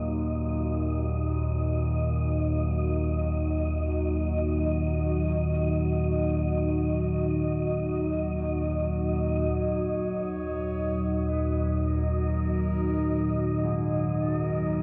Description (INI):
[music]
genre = dark ambient drone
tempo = free time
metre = none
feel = none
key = Eb minor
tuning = A4 = 439 Hz
[part]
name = deep dark ambient pad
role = sustained chords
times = 0.0-14.8 s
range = Gb3 to Eb5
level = -32 LUFS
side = equal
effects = chorus, built-in reverb
[part]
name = warm concert grand piano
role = arpeggios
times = 0.0-14.8 s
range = Ab2 to Gb4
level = -43 LUFS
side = equal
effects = none
[part]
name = analog drone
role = drone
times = 0.0-14.8 s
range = Eb2 to Bb2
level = -30 LUFS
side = equal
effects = chorus
[part]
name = wind-like tuned noise texture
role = texture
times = 0.0-14.8 s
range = Eb5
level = -39 LUFS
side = equal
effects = built-in reverb
[part]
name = breathy shakuhachi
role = melody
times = 9.5-14.8 s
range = Ab4 to Eb5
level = -48 LUFS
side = equal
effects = delay
[sound]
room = wet huge ambient reverb, RT60 7.1 s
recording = worn, warbling old tape, cassette tape, warbly pitch drift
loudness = -27 LUFS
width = mono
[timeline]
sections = 0.0-9.5 A section; 9.5-14.8 B section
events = none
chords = 0.0 Ebm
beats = free time